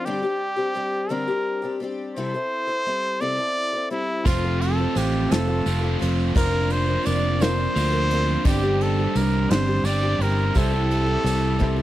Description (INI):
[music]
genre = folk rock and heartland rock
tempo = 57 BPM (dotted quarters)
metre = 6/8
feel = straight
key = C mixolydian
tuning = A4 = 440 Hz
[part]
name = clear trumpet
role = melody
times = 0.0-11.8 s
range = E4 to D5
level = -26 LUFS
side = equal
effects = none
[part]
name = picked twelve-string acoustic guitar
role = accompaniment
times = 0.0-11.8 s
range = G2 to Bb4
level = -29 LUFS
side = left 3 dB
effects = none
[part]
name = bright grand piano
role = accompaniment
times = 4.2-11.8 s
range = C4 to D5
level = -34 LUFS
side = right 2 dB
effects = none
[part]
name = overdriven electric guitar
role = riff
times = 4.3-11.8 s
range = F2 to G4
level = -26 LUFS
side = right 2 dB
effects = none
[part]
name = fingered electric bass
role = bass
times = 4.3-11.8 s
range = F1 to D2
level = -23 LUFS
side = equal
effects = none
[part]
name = soft brush drum kit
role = drums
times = 4.3-11.8 s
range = crash cymbal, kick drum, ride cymbal, snare drum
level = -28 LUFS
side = equal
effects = none
[part]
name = tambourine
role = percussion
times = 4.3-11.7 s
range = none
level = -44 LUFS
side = right 4 dB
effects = none
[sound]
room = little or no reverb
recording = dry, close 1970s-style studio recording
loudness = -20 LUFS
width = side -14 dB against mid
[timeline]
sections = 0.0-11.8 A section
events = drum fill 11.6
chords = 0.1 Gsus4; 2.2 C6; 4.3 F; 6.4 Bbadd9/F; 8.5 Gsus4; 10.6 C6